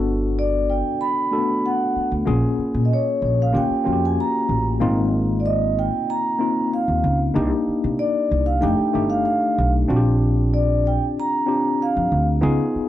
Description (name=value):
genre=lush 1970s-style soul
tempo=94 BPM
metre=4/4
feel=straight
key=unclear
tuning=A4 = 442 Hz
part: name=tine electric piano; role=accompaniment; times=0.0-12.9 s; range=A3 to A4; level=-22 LUFS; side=left 2 dB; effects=medium stereo tremolo
part: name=upright bass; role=bass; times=0.0-12.8 s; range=F1 to C3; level=-21 LUFS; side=right 1 dB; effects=none
part: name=vibraphone with medium mallets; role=melody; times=0.4-12.3 s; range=Db5 to B5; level=-23 LUFS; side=right 1 dB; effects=tape echo
room=light reverb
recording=dry, close 1970s-style studio recording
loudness=-18 LUFS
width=side -12 dB against mid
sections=0.0-12.9 A section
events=none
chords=0.0 Gmaj7; 2.3 Bbm7; 3.5 Eb7 (rootless); 4.8 Ab69; 7.3 Cm9; 8.6 F13; 9.9 Bb69